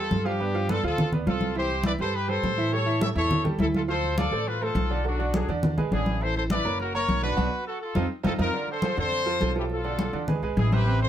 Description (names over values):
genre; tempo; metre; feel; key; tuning
latin, salsa; 206 BPM; 4/4; straight; unclear; A4 = 440 Hz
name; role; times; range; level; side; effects
clear trumpet section; melody; 0.0-11.1 s; D4 to E5; -28 LUFS; left 1 dB; none
clear baby grand piano; accompaniment; 0.0-11.1 s; C3 to F5; -30 LUFS; right 4 dB; none
upright bass; bass; 0.0-11.1 s; F#1 to A2; -29 LUFS; equal; none
congas; percussion; 0.1-11.1 s; none; -28 LUFS; equal; none
room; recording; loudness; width
light reverb; none; -23 LUFS; side -10 dB against mid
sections
0.0-8.5 A section; 8.5-11.1 B section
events
band accent 7.4-8.5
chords
0.4 G9; 1.6 Cmaj7; 2.7 A7; 3.9 Dm7; 5.0 Bm7; 5.6 E7; 6.2 Asus24; 6.8 F#; 7.4 Bm; 8.0 F5; 8.5 Dm13; 10.3 E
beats
0.11 | 0.40 0.69 0.98 1.27 | 1.56 1.85 2.14 2.43 | 2.72 3.01 3.30 3.59 | 3.88 4.17 4.47 4.76 | 5.05 5.34 5.63 5.92 | 6.21 6.50 6.79 7.08 | 7.37 7.67 7.96 8.25 | 8.54 8.83 9.12 9.41 | 9.70 9.99 10.28 10.57 | 10.86